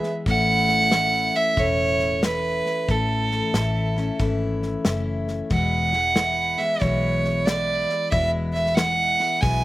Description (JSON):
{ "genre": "honky-tonk and classic country", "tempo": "92 BPM", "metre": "4/4", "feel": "swing 65% on 8ths", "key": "A major", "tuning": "A4 = 441 Hz", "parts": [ { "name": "clear fiddle", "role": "second line", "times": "0.0-9.6 s", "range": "A4 to G#5", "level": "-22 LUFS", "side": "right 2 dB", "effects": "none" }, { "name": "picked steel-string acoustic guitar", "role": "accompaniment", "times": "0.0-9.6 s", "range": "E2 to G#4", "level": "-26 LUFS", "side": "left 3 dB", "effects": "none" }, { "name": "natural country drum kit", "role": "drums", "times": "0.0-9.6 s", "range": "hi-hat, kick drum, snare drum", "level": "-26 LUFS", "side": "left 1 dB", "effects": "none" }, { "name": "vintage muted fingered electric bass", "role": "bass", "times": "0.3-9.6 s", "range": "E1 to B1", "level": "-27 LUFS", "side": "equal", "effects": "none" } ], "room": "little or no reverb", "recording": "recorded outdoors, with no room sound", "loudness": "-19 LUFS", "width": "side -16 dB against mid", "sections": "0.3-9.6 A section", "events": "fiddle solo 0.3-9.6; drum fill 9.4", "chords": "0.3 A; 5.5 E", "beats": "| 0.26 0.92 1.57 2.23 | 2.88 3.54 4.19 4.85 | 5.50 6.16 6.81 7.47 | 8.12 8.78 9.43" }